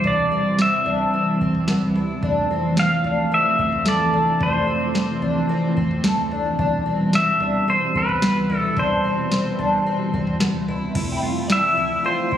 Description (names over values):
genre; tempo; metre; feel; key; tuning
dream pop; 110 BPM; 4/4; straight; C major; A4 = 439 Hz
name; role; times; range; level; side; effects
pedal steel guitar; melody; 0.0-12.4 s; B4 to F5; -22 LUFS; equal; digital delay
string machine, cellos; sustained chords; 0.0-12.4 s; B2 to E4; -22 LUFS; equal; ensemble chorus
fingerpicked twelve-string acoustic guitar; arpeggios; 0.0-12.4 s; A3 to F4; -25 LUFS; left 2 dB; lush chorus, digital delay
vintage muted fingered electric bass; bass; 0.0-12.4 s; E1 to F1; -33 LUFS; equal; none
soft vintage rhythm box; drums; 0.0-12.4 s; crash cymbal, kick drum, snare drum, toms; -26 LUFS; equal; overdrive
shimmering bell with halo; texture; 11.1-12.4 s; D5 to B5; -32 LUFS; right 2 dB; ensemble chorus, tremolo, digital delay
room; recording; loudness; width
light reverb; recorded on a phone in the room, studio reverb, compression; -18 LUFS; side -10 dB against mid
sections
0.0-11.0 A section; 11.0-12.4 A section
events
none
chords
0.0 Cmaj7/E; 2.2 Fmaj7; 6.6 Cmaj7/E; 11.0 Fmaj7